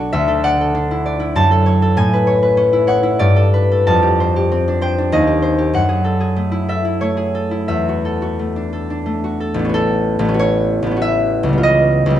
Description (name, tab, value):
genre	classical, solo harp piece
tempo	85-100 BPM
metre	3/4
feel	rubato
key	A major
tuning	A4 = 440 Hz
part	concert harp	solo	0.0-12.2 s	A1 to B5	-14 LUFS	equal	none
room	moderate stone room reverb, RT60 1.3 s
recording	nothing above 10.7 kHz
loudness	-14 LUFS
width	side -11 dB against mid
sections	0.0-9.7 A section; 9.7-12.2 B section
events	none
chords	0.1 Dadd9; 1.4 F#m7; 2.0 A69; 3.2 G69; 3.9 F69; 5.1 D#6; 5.7 F#m9; 7.7 E9sus4; 9.7 A69; 11.6 C#7#11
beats	| 0.11 0.74 1.36 | 1.97 2.58 3.19 | 3.87 4.51 5.12 | 5.74 6.36 7.01 | 7.69 8.38 9.06 | 9.74 10.39 11.03 | 11.64